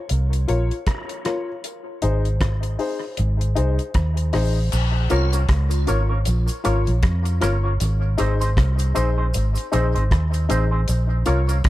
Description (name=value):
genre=dub reggae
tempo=78 BPM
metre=4/4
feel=swing 58% on 16ths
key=Bb minor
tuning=A4 = 439 Hz
part: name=vintage muted fingered electric bass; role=bass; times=0.1-11.7 s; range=G1 to F2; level=-19 LUFS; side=equal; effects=none
part: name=damped 70s drum kit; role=drums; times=0.1-11.7 s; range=crash cymbal, hi-hat, kick drum, rim click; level=-25 LUFS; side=equal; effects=none
part: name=dark upright piano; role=stabs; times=0.5-11.5 s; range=Eb4 to Db5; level=-27 LUFS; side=left 4 dB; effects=dub echo
part: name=cabasa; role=percussion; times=4.7-11.6 s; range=none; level=-38 LUFS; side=right 5 dB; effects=none
part: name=tonewheel organ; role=melody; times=5.1-5.3 s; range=F4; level=-35 LUFS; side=right 2 dB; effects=chorus vibrato, fast rotary speaker, dub echo
part: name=electric guitar with an envelope filter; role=accompaniment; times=5.1-11.6 s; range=C4 to Db5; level=-29 LUFS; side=right 2 dB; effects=vibrato effect, dub echo
room=light reverb, small room ambience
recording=echo-heavy mix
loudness=-18 LUFS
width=side -16 dB against mid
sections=0.0-4.7 A section; 4.7-11.7 B section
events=break 0.0-4.7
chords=0.0 Bbm; 1.6 Ab; 4.7 Bbm; 7.8 Ab; 10.9 Bbm